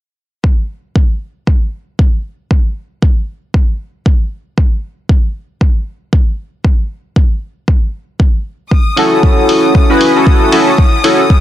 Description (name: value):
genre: deep house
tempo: 116 BPM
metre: 4/4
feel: swing 59% on 16ths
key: unclear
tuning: A4 = 439 Hz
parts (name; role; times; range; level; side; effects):
- electronic kick drum; drums; 0.4-11.4 s; none; -10 LUFS; equal; none
- rich chamber violin section; texture; 8.7-11.4 s; D#6; -18 LUFS; left 4 dB; none
- chorused polysynth; stabs; 9.0-11.2 s; C#4 to B4; -9 LUFS; equal; sidechain pumping, tape echo
- electronic hi-hat; drums; 9.0-11.2 s; none; -19 LUFS; left 1 dB; low-pass filter on hats, low-pass filter on room
room: light reverb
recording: dense, heavily limited modern master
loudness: -11 LUFS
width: side -13 dB against mid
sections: 0.4-11.4 A section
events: none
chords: 0.4 N.C.; 8.7 B9sus4